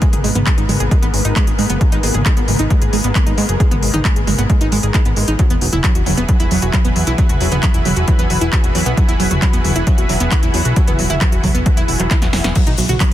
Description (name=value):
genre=uplifting trance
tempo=134 BPM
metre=4/4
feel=straight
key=unclear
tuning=A4 = 441 Hz
part: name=analog string pad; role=sustained chords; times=0.0-13.1 s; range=E3 to B4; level=-23 LUFS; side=left 1 dB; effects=ensemble chorus, sidechain pumping
part: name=analog pluck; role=arpeggios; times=0.0-13.1 s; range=F#3 to G#4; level=-21 LUFS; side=right 3 dB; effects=chorus, sidechain pumping, digital delay
part: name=electronic kick drum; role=drums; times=0.0-13.1 s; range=none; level=-15 LUFS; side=equal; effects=none
part: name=techno drum kit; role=drums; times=0.0-13.1 s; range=crash cymbal, handclaps, hi-hat, snare drum, toms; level=-21 LUFS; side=left 1 dB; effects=sidechain pumping on hats, sidechain pumping on cymbals, sidechain pumping on toms
part: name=plucky analog bass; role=bass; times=0.1-13.0 s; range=E1 to G#2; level=-19 LUFS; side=equal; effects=sidechain pumping
part: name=egg shaker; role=percussion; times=12.6-13.1 s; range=none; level=-28 LUFS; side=left 6 dB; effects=none
room=little or no reverb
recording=dense, heavily limited modern master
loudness=-12 LUFS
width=side -12 dB against mid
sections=0.0-13.1 A section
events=drum fill 12.1-12.6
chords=0.0 G#madd9; 5.4 Eadd9; 12.6 B